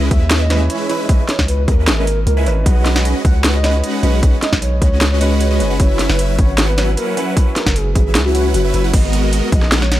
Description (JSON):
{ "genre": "future bass", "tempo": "153 BPM", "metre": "4/4", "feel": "half-time", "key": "B major", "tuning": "A4 = 441 Hz", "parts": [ { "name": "clear baby grand piano", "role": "accompaniment", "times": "0.0-9.0 s", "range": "E3 to D#5", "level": "-26 LUFS", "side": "right 1 dB", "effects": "sidechain pumping, tape echo" }, { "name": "supersaw chords", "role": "riff", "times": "0.0-10.0 s", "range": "F#3 to F#5", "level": "-21 LUFS", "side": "right 1 dB", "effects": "phaser, sidechain pumping" }, { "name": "long sustained 808-style bass", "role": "bass", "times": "0.0-10.0 s", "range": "F#1 to D#2", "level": "-16 LUFS", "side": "equal", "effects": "sidechain pumping" }, { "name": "soft octave-layered synth lead", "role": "melody", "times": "0.1-10.0 s", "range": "F#4 to F#5", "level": "-24 LUFS", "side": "left 1 dB", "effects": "chorus, phaser, sidechain pumping, digital delay" }, { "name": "electronic kick drum", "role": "drums", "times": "0.1-9.6 s", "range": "none", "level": "-14 LUFS", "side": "equal", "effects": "none" }, { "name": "trap drum kit", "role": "drums", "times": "0.1-10.0 s", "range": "crash cymbal, hi-hat, snare drum", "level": "-19 LUFS", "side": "equal", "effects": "none" } ], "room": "little or no reverb", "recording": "none", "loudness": "-12 LUFS", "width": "side -14 dB against mid", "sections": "0.0-8.9 A section; 8.9-10.0 A section", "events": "drop 0.0-8.9, 8.9-10.0; kick drops out 8.2-8.9", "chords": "0.0 C#m9; 2.7 B69; 5.8 F#7sus4; 8.9 G#m9", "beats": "0.31 0.70 | 1.09 1.48 1.88 2.27 | 2.66 3.05 3.44 3.84 | 4.23 4.62 5.01 5.41 | 5.80 6.19 6.58 6.97 | 7.37 7.76 8.15 8.54 | 8.94 9.33 9.72" }